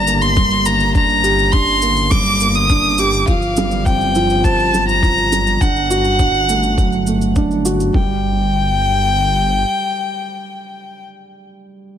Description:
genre	piano and strings electronica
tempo	103 BPM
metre	4/4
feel	straight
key	G minor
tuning	A4 = 440 Hz
part	dark violin	melody	0.0-11.0 s	F5 to Eb6	-17 LUFS	left 1 dB	digital delay
part	felt-muted upright piano	riff	0.0-12.0 s	F3 to D5	-19 LUFS	right 2 dB	none
part	dark detuned saw bass	bass	0.0-9.7 s	G1	-20 LUFS	left 1 dB	sidechain pumping
part	shaker	drums	0.1-7.9 s	none	-28 LUFS	right 2 dB	none
part	electronic kick drum	drums	0.4-8.1 s	none	-16 LUFS	equal	overdrive
room	light reverb, small room reverb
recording	none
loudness	-13 LUFS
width	side -9 dB against mid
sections	0.0-7.9 A section; 7.9-10.3 B section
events	drop 0.0-7.9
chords	0.0 Gm; 3.3 Fsus2/G; 5.6 D/G; 7.9 N.C.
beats	0.37 | 0.95 1.53 2.12 2.70 | 3.28 3.86 4.45 5.03 | 5.61 6.19 6.78 7.36 | 7.94 8.52 9.11 9.69

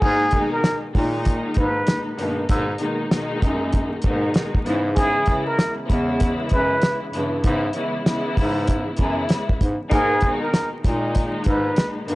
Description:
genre	hip hop, boom-bap hip-hop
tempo	97 BPM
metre	4/4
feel	swing 62% on 16ths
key	G# minor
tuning	A4 = 436 Hz
part	trumpet with plunger mute	melody	0.0-11.9 s	G#4 to B4	-23 LUFS	equal	high-pass filter, low-pass filter, analog delay
part	dark studio string section	accompaniment	0.0-12.2 s	A#2 to E4	-25 LUFS	left 1 dB	cassette tape, high-pass filter, low-pass filter
part	warm bass clarinet	bass	0.0-12.2 s	E2 to A#2	-24 LUFS	equal	none
part	cloth-damped thuddy drum kit	drums	0.0-12.2 s	crash cymbal, hi-hat, kick drum, snare drum	-20 LUFS	equal	none
part	mellow horn section	stabs	9.9-10.3 s	A#3 to A#4	-30 LUFS	right 1 dB	high-pass filter, low-pass filter, analog delay
room	studio reverb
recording	dry, gritty hardware recording, transformer saturation, vinyl crackle, nothing above 10.5 kHz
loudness	-19 LUFS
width	side -20 dB against mid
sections	0.0-12.2 A section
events	none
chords	0.0 G#madd9; 4.7 E6; 9.9 G#madd9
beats	| 0.02 0.64 1.26 1.87 | 2.49 3.11 3.73 4.35 | 4.97 5.58 6.20 6.82 | 7.44 8.06 8.68 9.30 | 9.91 10.53 11.15 11.77

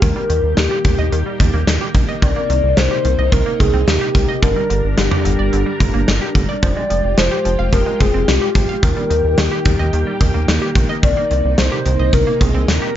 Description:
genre	synth-pop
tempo	109 BPM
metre	4/4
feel	straight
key	Eb major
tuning	A4 = 440 Hz
part	hollow clarinet-like synth lead	melody	0.0-13.0 s	G4 to D5	-20 LUFS	left 2 dB	chorus, phaser, tape echo
part	string machine, full ensemble	sustained chords	0.0-13.0 s	C3 to Bb4	-23 LUFS	right 1 dB	ensemble chorus
part	analog pluck	arpeggios	0.0-12.9 s	D3 to F5	-25 LUFS	right 3 dB	chorus, tape echo
part	round analog bass	bass	0.0-12.8 s	F1 to Eb2	-18 LUFS	equal	none
part	gated 80s drum kit	drums	0.0-12.8 s	hi-hat, kick drum, snare drum, toms	-17 LUFS	equal	none
room	moderate studio reverb, RT60 0.5 s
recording	nothing above 7.6 kHz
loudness	-13 LUFS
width	side -11 dB against mid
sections	0.0-13.0 A section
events	none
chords	0.0 Eb; 2.2 Cm7; 4.4 Gm; 6.6 Fmadd9; 8.8 Eb; 11.0 Cm7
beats	| 0.02 0.57 1.12 1.67 | 2.22 2.77 3.33 3.88 | 4.42 4.98 5.53 6.08 | 6.63 7.18 7.73 8.28 | 8.83 9.38 9.93 10.48 | 11.03 11.58 12.13 12.68

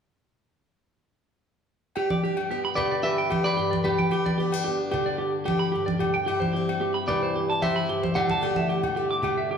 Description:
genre	highlife guitar band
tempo	111 BPM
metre	4/4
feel	straight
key	G major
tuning	A4 = 440 Hz
part	picked plugged-in steel-string acoustic guitar	accompaniment	2.0-9.6 s	G2 to G4	-32 LUFS	left 6 dB	none
part	clean electric guitar	arpeggios	2.0-9.6 s	G4 to D6	-27 LUFS	right 4 dB	none
part	agogo bells	percussion	2.0-9.4 s	none	-32 LUFS	left 5 dB	none
part	congas	percussion	2.1-9.4 s	none	-30 LUFS	left 1 dB	none
part	electric guitar at the edge of break-up	melody	2.8-9.6 s	G4 to F#5	-28 LUFS	equal	none
room	wet large studio reverb, RT60 1.3 s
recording	band playing live in one room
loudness	-23 LUFS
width	side -7 dB against mid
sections	2.0-9.6 A section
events	none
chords	2.0 G; 6.3 Amadd9/G (rootless); 8.4 Dadd9/G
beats	| 1.97 2.51 3.04 3.58 | 4.12 4.66 5.20 5.74 | 6.28 6.82 7.36 7.89 | 8.43 8.97 9.51

